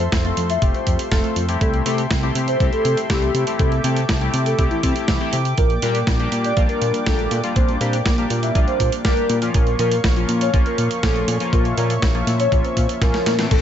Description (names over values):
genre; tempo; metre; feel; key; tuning
italo disco; 121 BPM; 4/4; straight; unclear; A4 = 440 Hz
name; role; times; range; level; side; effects
soft octave-layered synth lead; melody; 0.0-13.6 s; E4 to E5; -24 LUFS; equal; chorus, phaser, ping-pong delay
warm analog pad; sustained chords; 0.0-13.6 s; Bb3 to D6; -27 LUFS; right 1 dB; chorus
chorused polysynth; stabs; 0.0-13.6 s; E3 to A4; -25 LUFS; left 4 dB; ping-pong delay
fat analog bass; bass; 0.0-13.6 s; F1 to C3; -22 LUFS; equal; none
clean 12-bit digital drum machine; drums; 0.0-13.6 s; crash cymbal, hi-hat, snare drum; -26 LUFS; right 1 dB; studio ambience
electronic kick drum; drums; 0.1-13.6 s; none; -20 LUFS; equal; studio ambience
room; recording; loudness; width
light reverb; nothing above 7.9 kHz; -16 LUFS; side -10 dB against mid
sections
0.0-13.5 A section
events
drum fill 13.0-13.5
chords
0.0 F; 1.6 C6; 5.6 Gm/Bb; 9.5 Bbm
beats
0.12 0.62 1.12 | 1.61 2.11 2.60 3.10 | 3.60 4.09 4.59 5.08 | 5.58 6.08 6.57 7.07 | 7.56 8.06 8.55 9.05 | 9.55 10.04 10.54 11.03 | 11.53 12.03 12.52 13.02 | 13.51